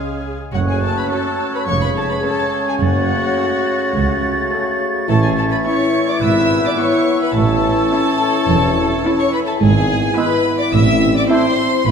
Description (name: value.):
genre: cinematic, playful, whimsical film cue.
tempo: 106 BPM.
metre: 4/4.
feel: straight.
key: F# minor.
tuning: A4 = 439 Hz.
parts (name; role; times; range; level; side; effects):
warm chamber violin section; melody; 0.0-11.9 s; F#5 to E6; -23 LUFS; left 3 dB; none.
silver concert flute; second line; 0.0-11.4 s; C#5 to A6; -27 LUFS; left 1 dB; none.
warm clarinet; second line; 0.0-11.5 s; E4 to A4; -25 LUFS; left 2 dB; none.
warm oboe; second line; 0.0-11.5 s; B4 to E#5; -27 LUFS; right 3 dB; none.
warm studio violin section; second line; 0.0-11.9 s; F#4 to E#5; -24 LUFS; left 3 dB; none.
warm bassoon; accompaniment; 0.0-11.5 s; C#3 to A3; -24 LUFS; right 1 dB; none.
warm chamber viola section; accompaniment; 0.0-11.7 s; B3 to A4; -25 LUFS; right 2 dB; none.
mellow French horn section; sustained chords; 0.0-11.9 s; G#3 to F4; -21 LUFS; left 3 dB; none.
dark chamber double bass section; bass; 0.0-11.9 s; E1 to C#2; -23 LUFS; right 3 dB; none.
warm chamber cello section; bass; 0.0-11.9 s; C#2 to C#3; -22 LUFS; right 3 dB; none.
warm tuba; bass; 0.5-11.9 s; E1 to C#2; -23 LUFS; right 2 dB; none.
room: wet scoring stage reverb, RT60 1.7 s.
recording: heard from further back in the room.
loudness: -14 LUFS.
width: side -6 dB against mid.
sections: 0.5-11.9 A section.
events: none.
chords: 0.0 C#; 0.5 F#m; 1.7 C#/E#; 2.8 F#m; 5.1 A; 6.2 E/G#; 7.3 A; 9.6 E/G#; 10.7 Am.